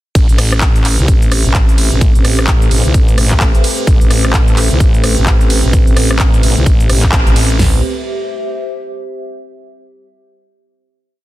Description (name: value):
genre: bass house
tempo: 129 BPM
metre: 4/4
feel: swing 60% on 16ths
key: A minor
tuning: A4 = 441 Hz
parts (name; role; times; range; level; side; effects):
- dark analog pad; sustained chords; 0.9-7.8 s; A3 to C5; -24 LUFS; equal; chorus, sidechain pumping
- growling FM bass; bass; 0.2-7.8 s; A1 to C2; -14 LUFS; equal; overdrive, sidechain pumping
- big-room dance drum kit; drums; 0.2-7.7 s; hi-hat, kick drum, snare drum, toms; -11 LUFS; equal; studio reverb
- big-room dance drum kit; drums; 0.2-7.6 s; handclaps, hi-hat, ride cymbal, rim click; -18 LUFS; right 1 dB; studio reverb
- warbly tape-like pad; texture; 0.8-9.4 s; C4 to E5; -23 LUFS; right 1 dB; chorus, built-in reverb, sidechain pumping
room: little or no reverb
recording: dense, heavily limited modern master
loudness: -9 LUFS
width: side -16 dB against mid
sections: 0.2-7.6 drop; 7.6-9.5 final chord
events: drop 0.2-7.6; band accent 7.1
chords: 0.2 Amadd9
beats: | 0.15 0.62 1.08 1.55 | 2.01 2.48 2.94 3.41 | 3.87 4.34 4.80 5.27 | 5.73 6.20 6.66 7.13 | 7.59 8.06 8.52 8.99